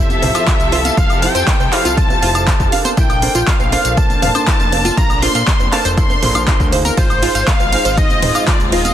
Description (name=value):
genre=progressive house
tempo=120 BPM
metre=4/4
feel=straight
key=unclear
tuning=A4 = 440 Hz
part: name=wide unison lead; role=melody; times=0.0-8.9 s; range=C5 to C6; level=-20 LUFS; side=equal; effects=sidechain pumping, digital delay
part: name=warm symphonic violin section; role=second line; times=0.0-8.9 s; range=C5 to C6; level=-25 LUFS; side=left 2 dB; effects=sidechain pumping, digital delay
part: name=dark studio string section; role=sustained chords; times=0.0-8.9 s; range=F3 to E5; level=-25 LUFS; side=left 3 dB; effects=sidechain pumping
part: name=analog pluck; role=arpeggios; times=0.0-8.9 s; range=F3 to F5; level=-21 LUFS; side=equal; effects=chorus, sidechain pumping, digital delay
part: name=felt-muted upright piano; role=stabs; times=0.0-8.9 s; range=D4 to F5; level=-23 LUFS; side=right 4 dB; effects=sidechain pumping, digital delay
part: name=fat analog bass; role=bass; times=0.0-8.9 s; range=Eb1 to Bb2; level=-21 LUFS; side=equal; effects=sidechain pumping
part: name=house drum kit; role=drums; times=0.1-8.9 s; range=handclaps, hi-hat, ride cymbal, tambourine, woodblock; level=-20 LUFS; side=equal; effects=overdrive
part: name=electronic congas, toms and bongos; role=percussion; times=0.1-8.9 s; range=none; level=-26 LUFS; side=right 4 dB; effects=sidechain pumping on perc, sidechain pumping on toms
part: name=electronic kick drum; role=drums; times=0.5-8.6 s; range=none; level=-16 LUFS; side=equal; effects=overdrive
room=digital ambience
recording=dense, heavily limited modern master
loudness=-12 LUFS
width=side -11 dB against mid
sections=0.0-8.9 A section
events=none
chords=0.0 Fmaj7; 3.0 Bbmaj9; 7.0 Ab6